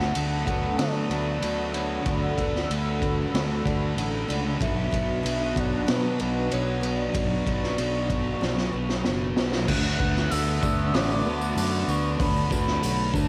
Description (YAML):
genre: rock, shoegaze and dream pop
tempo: 94 BPM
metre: 4/4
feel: straight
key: D major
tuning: A4 = 440 Hz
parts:
  - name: hollow clarinet-like synth lead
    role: melody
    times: 0.0-13.3 s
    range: B4 to F#6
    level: -34 LUFS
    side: equal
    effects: chorus, cassette tape, tape echo
  - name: hollow soft pad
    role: sustained chords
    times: 0.0-9.7 s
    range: D4 to E6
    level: -36 LUFS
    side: equal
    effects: chorus, cassette tape
  - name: picked twelve-string acoustic guitar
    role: arpeggios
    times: 0.0-13.3 s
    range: F#3 to A4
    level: -39 LUFS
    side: equal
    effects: none
  - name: thick fuzz guitar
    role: riff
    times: 0.0-13.3 s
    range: B2 to D4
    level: -32 LUFS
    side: equal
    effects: distortion, analog chorus, cassette tape
  - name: twangy electric guitar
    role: riff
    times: 0.0-13.3 s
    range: B2 to F#4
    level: -36 LUFS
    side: equal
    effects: reverse reverb, cassette tape
  - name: fuzz fingered electric bass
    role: bass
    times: 0.0-13.3 s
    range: F#1 to D3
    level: -32 LUFS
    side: equal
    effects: overdrive
  - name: raw garage drum kit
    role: drums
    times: 0.0-13.3 s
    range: crash cymbal, hi-hat, kick drum, ride cymbal, snare drum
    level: -32 LUFS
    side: equal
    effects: cassette tape
  - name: tambourine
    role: percussion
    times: 9.7-13.3 s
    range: none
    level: -45 LUFS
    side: equal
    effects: none
room: light reverb, small room ambience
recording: home recording on cassette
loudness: -26 LUFS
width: mono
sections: 0.0-9.7 A section; 9.7-13.3 A section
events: drum fill 8.4-9.7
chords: 0.0 D6; 4.6 Bm; 9.7 D6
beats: 0.15 0.79 1.42 | 2.06 2.70 3.33 3.97 | 4.60 5.24 5.88 6.51 | 7.14 7.78 8.41 9.04 | 9.68 10.31 10.94 11.57 | 12.20 12.82